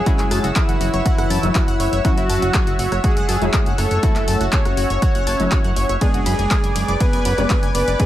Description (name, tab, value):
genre	melodic techno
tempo	121 BPM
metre	4/4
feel	straight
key	F# minor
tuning	A4 = 437 Hz
part	soft supersaw	melody	0.0-8.1 s	E4 to C#5	-24 LUFS	equal	sidechain pumping, dub echo
part	big bright polysynth	second line	0.0-8.1 s	E3 to C#4	-28 LUFS	left 1 dB	chorus, cassette tape, sidechain pumping, digital delay
part	lush unison pad	sustained chords	0.0-8.1 s	B4 to E6	-27 LUFS	equal	chorus, phaser, sidechain pumping
part	synth brass stab	stabs	0.0-8.1 s	F#3 to E4	-28 LUFS	left 2 dB	chorus, sidechain pumping, digital delay
part	analog pluck	arpeggios	0.1-8.1 s	E4 to A6	-28 LUFS	equal	chorus, cassette tape, sidechain pumping, digital delay
part	electronic kick drum	drums	0.1-8.1 s	none	-19 LUFS	equal	overdrive
part	punchy analog drum machine	drums	0.1-8.1 s	handclaps, hi-hat, ride cymbal, rim click	-26 LUFS	left 1 dB	overdrive
part	fat analog bass	bass	0.2-8.0 s	F#1 to F#2	-22 LUFS	equal	tube saturation, sidechain pumping
room	little or no reverb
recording	none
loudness	-16 LUFS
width	side -13 dB against mid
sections	0.0-8.1 A section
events	none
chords	0.0 F#m7; 6.0 G#dim/F#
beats	| 0.06 0.56 1.05 1.55 | 2.05 2.54 3.04 3.53 | 4.03 4.53 5.02 5.52 | 6.01 6.51 7.00 7.50 | 8.00